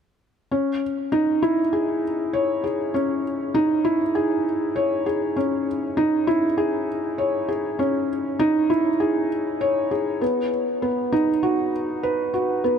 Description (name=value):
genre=electronica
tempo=99 BPM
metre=4/4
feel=straight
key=C# minor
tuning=A4 = 439 Hz
part: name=felt-muted upright piano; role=solo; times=0.5-12.8 s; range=B3 to C#5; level=-20 LUFS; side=equal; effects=none
room=moderate huge ambient reverb, RT60 8.8 s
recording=none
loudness=-20 LUFS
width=side -7 dB against mid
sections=0.5-12.8 A section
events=none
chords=none